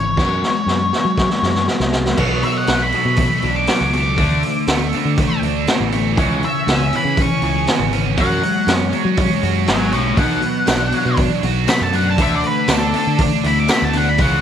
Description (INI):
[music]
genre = indie rock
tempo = 120 BPM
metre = 4/4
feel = straight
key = B dorian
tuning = A4 = 440 Hz
[part]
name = octave-fuzz lead guitar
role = melody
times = 0.0-14.4 s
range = A4 to D6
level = -21 LUFS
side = left 2 dB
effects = distortion, tape echo
[part]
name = distorted electric guitar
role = riff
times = 0.0-14.4 s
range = B2 to D4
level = -23 LUFS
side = left 12 dB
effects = distortion
[part]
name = fingered electric bass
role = bass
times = 0.0-14.4 s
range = G#1 to F#3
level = -21 LUFS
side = equal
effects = none
[part]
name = raw garage drum kit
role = drums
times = 0.2-14.3 s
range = crash cymbal, hi-hat, kick drum, snare drum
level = -20 LUFS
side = equal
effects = none
[part]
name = biting overdriven guitar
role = riff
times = 2.2-14.4 s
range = B2 to G#4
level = -22 LUFS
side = right 14 dB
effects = analog chorus, tape echo
[part]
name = tambourine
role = percussion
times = 10.7-13.8 s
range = none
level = -34 LUFS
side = left 16 dB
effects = none
[sound]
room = small room ambience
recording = 1960s-style stereo with parts hard left and right, lossy compression artefacts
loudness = -14 LUFS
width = side -9 dB against mid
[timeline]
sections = 0.0-2.2 A section; 2.2-14.4 B section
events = drum fill 0.2-2.2; lead electric guitar solo 2.2-14.4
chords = 0.2 F#sus2; 2.2 Bm7; 4.2 Dsus2; 6.2 C#m7; 8.2 F#sus2; 10.2 Bm7; 12.2 Dsus2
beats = | 0.19 0.69 1.19 1.69 | 2.19 2.69 3.19 3.69 | 4.18 4.68 5.18 5.68 | 6.18 6.68 7.18 7.68 | 8.18 8.68 9.18 9.68 | 10.18 10.68 11.19 11.69 | 12.19 12.69 13.19 13.70 | 14.20